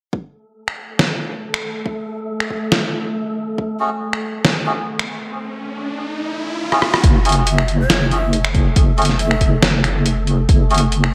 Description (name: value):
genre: deep dubstep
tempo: 139 BPM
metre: 4/4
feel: swing 54% on 16ths, half-time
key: F# minor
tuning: A4 = 436 Hz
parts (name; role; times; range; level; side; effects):
- electronic kick drum; drums; 0.1-3.7, 7.0-10.6 s; none; -17 LUFS; equal; high-pass filter on kick, small room ambience
- wind-like tuned noise texture; texture; 0.9-11.1 s; A3 to A4; -30 LUFS; equal; built-in reverb
- trip hop sampler-style drum kit; drums; 0.7-11.1 s; finger snaps, hi-hat, rim click, snare drum; -22 LUFS; equal; small room ambience, gated reverb
- riser; sound effects; 4.9-7.0 s; none; -29 LUFS; equal; none
- melodica; stabs; 3.8-10.8 s; A3 to G#4; -26 LUFS; equal; dub echo
- deep soft wobble bass; bass; 7.0-11.1 s; F#1; -20 LUFS; equal; chorus, tube saturation
- breathy long shakuhachi; melody; 7.5-9.5 s; C#5 to E5; -29 LUFS; equal; dub echo
room: moderate lush hall reverb, RT60 2.0 s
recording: bright 1980s-style digital production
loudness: -18 LUFS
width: mono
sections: 0.1-7.0 A section; 7.0-11.1 B section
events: riser 4.9-7.0; drum fill 6.7-7.0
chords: 0.1 N.C.; 7.0 F#m